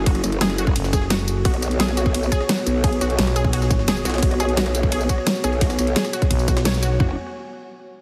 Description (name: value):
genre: dark technical drum and bass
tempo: 173 BPM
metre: 4/4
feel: straight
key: unclear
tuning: A4 = 440 Hz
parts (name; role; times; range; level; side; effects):
- dark analog pad; sustained chords; 0.0-7.2 s; B3 to G#5; -30 LUFS; equal; chorus, vintage 12-bit sampler grit, sidechain pumping
- growl bass; bass; 0.0-7.2 s; F#1 to B1; -24 LUFS; equal; chorus, overdrive
- unison pluck; arpeggios; 0.1-7.2 s; F#4 to C#5; -32 LUFS; equal; sidechain pumping, delay
- drum and bass drum kit; drums; 0.1-7.1 s; kick drum, toms; -22 LUFS; equal; none
- dubstep drum kit; drums; 0.1-6.9 s; hi-hat, ride cymbal, rim click, snare drum, tambourine; -27 LUFS; equal; none
- jungle sampler-style drum kit; drums; 0.1-6.9 s; hi-hat, snare drum; -35 LUFS; equal; none
- growling FM bass; bass; 0.8-4.0, 6.3-7.0 s; F#1 to B1; -24 LUFS; equal; none
room: moderate lush hall reverb, RT60 2.1 s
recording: heavily compressed radio sound, multiband compression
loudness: -20 LUFS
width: mono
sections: 0.0-7.0 A section; 7.0-8.0 B section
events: drop 0.0-7.0; band accent 6.7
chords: 0.0 F#m; 1.5 B5; 7.0 F#5